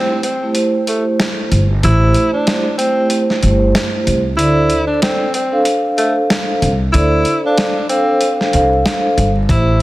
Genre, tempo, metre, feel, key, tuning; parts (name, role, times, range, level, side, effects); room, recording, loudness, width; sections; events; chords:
hip hop, boom-bap hip-hop; 94 BPM; 4/4; swing 58% on 16ths; A4 = 442 Hz
breathy tenor saxophone; melody; 0.0-9.8 s; A3 to E4; -18 LUFS; equal; high-pass filter, low-pass filter, digital delay
vibraphone with soft mallets; accompaniment; 0.0-9.8 s; A3 to F5; -16 LUFS; right 1 dB; high-pass filter, low-pass filter
dusty soul sampler-style drum kit; drums; 0.2-9.7 s; hi-hat, kick drum, snare drum; -20 LUFS; equal
upright bass; bass; 1.5-9.8 s; G1 to D2; -14 LUFS; equal
light reverb, studio ambience; dense, heavily limited modern master, vinyl crackle; -12 LUFS; side -17 dB against mid
0.0-9.8 A section
break 0.0-9.5
0.0 Am7; 4.4 Dm7